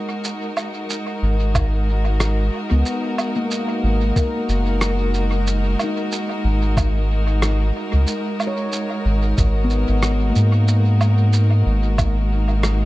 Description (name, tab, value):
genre	ambient dub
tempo	92 BPM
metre	4/4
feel	swing 56% on 16ths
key	G# minor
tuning	A4 = 440 Hz
part	warm chamber string section	sustained chords	0.0-12.9 s	G#3 to A#4	-24 LUFS	equal	none
part	handpan	arpeggios	0.0-12.9 s	A#3 to C#5	-27 LUFS	left 2 dB	dub echo
part	electronic shaker, woodblock and rim click	drums	0.2-12.8 s	none	-27 LUFS	right 2 dB	small room ambience, dub echo
part	soft dub sub bass	bass	1.2-12.9 s	F#1 to G#2	-17 LUFS	equal	none
part	electronic kick drum	drums	1.6-12.1 s	none	-19 LUFS	equal	small room ambience
room	small room reverb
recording	dark, warm production, nothing above 10.3 kHz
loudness	-17 LUFS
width	side -17 dB against mid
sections	0.2-12.9 A section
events	break 0.0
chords	0.2 G#m9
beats	| 0.25 0.90 1.55 2.20 | 2.86 3.51 4.16 4.81 | 5.46 6.12 6.77 7.42 | 8.07 8.72 9.38 10.03 | 10.68 11.33 11.99 12.64